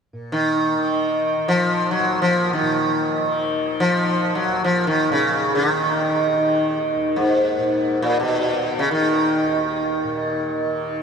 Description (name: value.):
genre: indian classical, Hindustani.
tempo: free time.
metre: none.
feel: none.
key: unclear.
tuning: A4 = 441 Hz.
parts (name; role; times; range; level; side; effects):
tanpura; drone; 0.1-11.0 s; Eb2 to Eb3; -28 LUFS; right 1 dB; none.
sitar; melody; 0.3-10.5 s; Ab2 to Gb3; -18 LUFS; equal; ping-pong delay.
room: wet huge ambient reverb, RT60 5.0 s.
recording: dreamy mix soaked in reverb.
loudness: -18 LUFS.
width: side -6 dB against mid.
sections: 0.1-11.0 A section.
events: none.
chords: none.